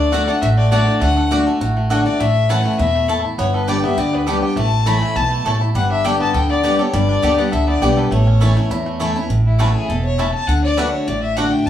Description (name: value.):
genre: bluegrass.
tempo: 203 BPM.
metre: 4/4.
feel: straight.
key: A mixolydian.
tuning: A4 = 440 Hz.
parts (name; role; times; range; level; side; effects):
bluegrass banjo; melody; 0.0-11.4 s; G3 to A4; -25 LUFS; right 1 dB; plate reverb.
rich fiddle; melody; 0.0-11.7 s; E4 to B5; -21 LUFS; left 5 dB; plate reverb.
picked steel-string acoustic guitar; accompaniment; 0.0-11.7 s; E2 to G4; -20 LUFS; equal; none.
upright bass; bass; 0.0-11.7 s; E1 to E2; -19 LUFS; right 1 dB; none.
mandolin; stabs; 0.1-11.5 s; A3 to A5; -23 LUFS; equal; none.
room: wet studio reverb, RT60 0.5 s.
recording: heard from further back in the room.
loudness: -14 LUFS.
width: side -10 dB against mid.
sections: 0.0-9.3 A section; 9.3-11.7 B section.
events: fiddle solo 9.3-11.7.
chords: 0.0 D; 2.2 A; 3.4 G; 4.6 A; 5.8 G; 8.1 A; 10.5 D.